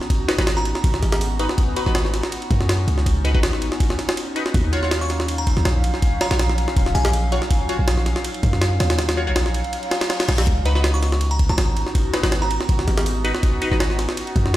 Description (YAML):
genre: drum and bass, jungle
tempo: 162 BPM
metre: 4/4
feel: swing 53% on 16ths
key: unclear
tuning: A4 = 444 Hz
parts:
  - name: warbly tape-like pad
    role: sustained chords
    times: 0.0-14.6 s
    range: Gb3 to F5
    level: -28 LUFS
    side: equal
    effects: chorus, built-in reverb, phaser, vintage 12-bit sampler grit
  - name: filtered dub chord stab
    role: stabs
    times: 0.0-14.6 s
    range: Eb4 to Db5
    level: -28 LUFS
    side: left 1 dB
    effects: phaser, dub echo
  - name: jungle sampler-style drum kit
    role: drums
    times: 0.0-14.6 s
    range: kick drum, ride cymbal, snare drum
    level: -21 LUFS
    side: equal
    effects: small room reverb
  - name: warm 808-style bass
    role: bass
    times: 0.4-14.6 s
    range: Eb1 to Gb2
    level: -20 LUFS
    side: equal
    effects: none
  - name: glassy synth bell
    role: melody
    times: 0.6-1.1, 5.0-7.2, 10.9-12.9 s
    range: Ab5 to Db6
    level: -31 LUFS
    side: right 2 dB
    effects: chorus, phaser, dub echo
  - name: reverse cymbal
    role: sound effects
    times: 9.8-10.5 s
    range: none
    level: -33 LUFS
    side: left 2 dB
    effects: none
room: light reverb, digital ambience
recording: played on a big sound system in a bare room, stone room reverb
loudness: -18 LUFS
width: side -14 dB against mid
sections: 0.0-14.6 A section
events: kick drops out 9.7-10.5; reverse cymbal 9.8-10.5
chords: 0.0 Db9sus4; 4.5 Ebm9; 10.5 Db9sus4